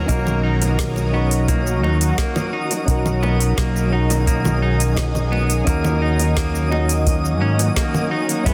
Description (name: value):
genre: sunset chillout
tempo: 86 BPM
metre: 4/4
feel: straight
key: B major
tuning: A4 = 437 Hz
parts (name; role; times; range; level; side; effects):
- shimmering ambient pad; sustained chords; 0.0-8.5 s; D#3 to A#4; -28 LUFS; equal; chorus, built-in reverb, phaser, shimmer reverb
- fretless electric bass; bass; 0.0-8.5 s; B1 to G#2; -22 LUFS; equal; none
- soft electric-piano-like synth keys; accompaniment; 0.1-8.5 s; C#4 to D#5; -27 LUFS; equal; chorus, tape echo, shimmer reverb
- clean electric guitar; arpeggios; 0.1-8.5 s; A#3 to D#4; -30 LUFS; equal; tape echo, shimmer reverb
- electronic kick drum; drums; 0.1-8.5 s; none; -24 LUFS; equal; small room ambience
- smooth R&B drum kit; drums; 0.1-8.5 s; congas, hi-hat, shaker, snare drum; -28 LUFS; equal; small room ambience
- bongos; percussion; 0.1-8.5 s; none; -35 LUFS; equal; none
- twinkling granular texture; texture; 0.7-8.5 s; D#5 to D#6; -34 LUFS; equal; built-in reverb, shimmer reverb
room: light reverb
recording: dense, heavily limited modern master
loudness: -19 LUFS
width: mono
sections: 0.0-8.5 A section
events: none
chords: 0.1 Bmaj7; 5.7 D#m7